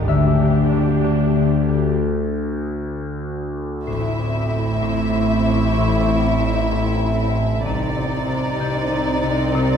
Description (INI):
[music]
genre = cinematic, suspense film score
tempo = 95 BPM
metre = 3/4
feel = straight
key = A minor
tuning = A4 = 440 Hz
[part]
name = dark symphonic viola section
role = accompaniment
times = 0.0-9.8 s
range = C4 to G4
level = -27 LUFS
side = right 1 dB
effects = none
[part]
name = warm symphonic cello section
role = bass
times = 0.0-9.8 s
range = D2 to C3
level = -23 LUFS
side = right 3 dB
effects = none
[part]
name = warm symphonic double bass section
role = bass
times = 0.0-4.5, 7.7-8.3 s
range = A1 to D2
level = -26 LUFS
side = right 2 dB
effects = none
[part]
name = overtone-sweeping drone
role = drone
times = 0.0-9.8 s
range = A1 to D2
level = -24 LUFS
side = equal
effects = chorus, built-in reverb, phaser
[part]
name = buzzing marimba with medium hard mallets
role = riff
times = 0.1-9.7 s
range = A2 to D3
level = -23 LUFS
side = left 5 dB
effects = none
[part]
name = concert harp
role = texture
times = 0.1-9.8 s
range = E5 to G6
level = -30 LUFS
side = left 10 dB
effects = none
[part]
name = warm chamber violin section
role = melody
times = 3.9-9.8 s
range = D5 to E5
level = -27 LUFS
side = left 2 dB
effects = none
[part]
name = dark chamber violin section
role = second line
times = 3.9-9.8 s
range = Eb4 to E4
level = -25 LUFS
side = left 2 dB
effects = none
[sound]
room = moderate scoring stage reverb, RT60 1.7 s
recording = minimal, uncompressed stereo recording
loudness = -17 LUFS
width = side -7 dB against mid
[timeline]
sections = 0.0-3.9 A section; 3.9-9.8 A section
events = break 2.0-3.9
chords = 0.1 Dsus4; 3.9 Am; 7.7 Cmadd9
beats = | 0.09 0.72 1.35 | 1.98 2.61 3.24 | 3.88 4.51 5.14 | 5.77 6.40 7.03 | 7.67 8.30 8.93 | 9.56